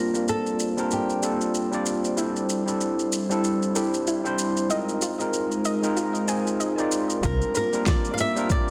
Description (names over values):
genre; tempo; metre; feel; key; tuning
sunset chillout; 95 BPM; 4/4; swing 58% on 16ths; unclear; A4 = 440 Hz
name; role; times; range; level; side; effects
flamenco guitar; melody; 0.0-1.8, 7.3-8.7 s; G4 to F5; -31 LUFS; equal; tape echo
overdriven tine electric piano; accompaniment; 0.0-8.7 s; G3 to D5; -30 LUFS; equal; delay
airy breathy pad; sustained chords; 0.0-8.7 s; G3 to D6; -30 LUFS; equal; chorus
electronic shaker and snare drum; drums; 0.1-8.6 s; none; -34 LUFS; equal; studio reverb
soft round pluck; arpeggios; 2.2-8.1 s; E4 to Ab5; -35 LUFS; equal; chorus, delay
upright bass; bass; 7.2-7.4 s; C2; -29 LUFS; equal; none
electronic kick drum; drums; 7.2-8.6 s; none; -26 LUFS; equal; studio reverb
room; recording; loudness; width
wet plate reverb, RT60 1.7 s, small room ambience; dense, heavily limited modern master; -25 LUFS; mono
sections
0.0-7.2 A section; 7.2-8.7 B section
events
filter sweep on analog synth pad 0.0-7.2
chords
0.0 C9sus4; 2.2 D9sus4; 4.7 Bb9sus4; 7.2 C9sus4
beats
0.28 0.92 1.55 | 2.18 2.81 3.44 4.07 | 4.71 5.34 5.97 6.60 | 7.23 7.86 8.49